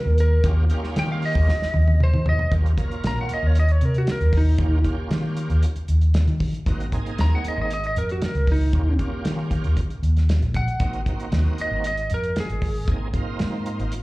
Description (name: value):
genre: straight-eighth soul blues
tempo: 116 BPM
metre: 4/4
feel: straight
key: Eb mixolydian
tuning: A4 = 444 Hz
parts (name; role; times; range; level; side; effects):
- lightly driven lead guitar; melody; 0.0-12.9 s; Eb4 to Bb5; -28 LUFS; equal; slapback echo
- vintage muted fingered electric bass; bass; 0.1-13.9 s; Ab1 to Eb3; -20 LUFS; equal; none
- warm soul drum kit; drums; 0.2-14.0 s; hi-hat, kick drum, snare drum, toms; -26 LUFS; equal; none
- bright tonewheel organ; accompaniment; 0.4-13.9 s; Bb3 to Bb4; -33 LUFS; right 3 dB; overdrive, chorus vibrato, slow rotary speaker, slapback echo
- rich chamber string section; sustained chords; 0.4-1.4 s; Db4 to G4; -43 LUFS; left 2 dB; none
room: small room ambience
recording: live gig heard through the venue's PA, club reverb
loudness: -19 LUFS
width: side -20 dB against mid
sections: 0.0-2.5 A section; 2.5-14.0 B section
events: lead electric guitar solo 0.0-2.5; drum fill 1.5-2.5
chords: 0.0 Eb7; 6.7 Ab7; 8.7 Eb7; 10.8 Ab7